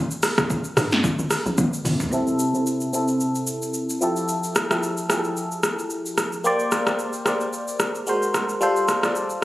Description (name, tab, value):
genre	amapiano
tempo	111 BPM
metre	4/4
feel	swing 55% on 16ths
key	C mixolydian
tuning	A4 = 440 Hz
part	tight log drum bass	bass	0.0-2.0 s	G1 to G2	-25 LUFS	equal	none
part	deep house drum kit	drums	0.1-9.4 s	hi-hat, kick drum, rim click, shaker, snare drum, toms	-23 LUFS	equal	overdrive
part	barking FM electric piano	accompaniment	2.1-9.4 s	C3 to D5	-22 LUFS	equal	chorus, low-pass filter
room	moderate lush hall reverb, RT60 2.2 s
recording	recorded on a phone in the room, studio reverb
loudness	-20 LUFS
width	side -16 dB against mid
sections	0.0-2.1 A section; 2.1-9.4 B section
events	drop 0.0-2.1; drum fill 1.6-2.1; filter sweep on FM electric piano 2.1-9.4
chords	0.0 N.C.; 2.1 C6; 4.0 Fmaj9; 6.4 Bb69; 8.1 Ab9; 8.6 G9sus4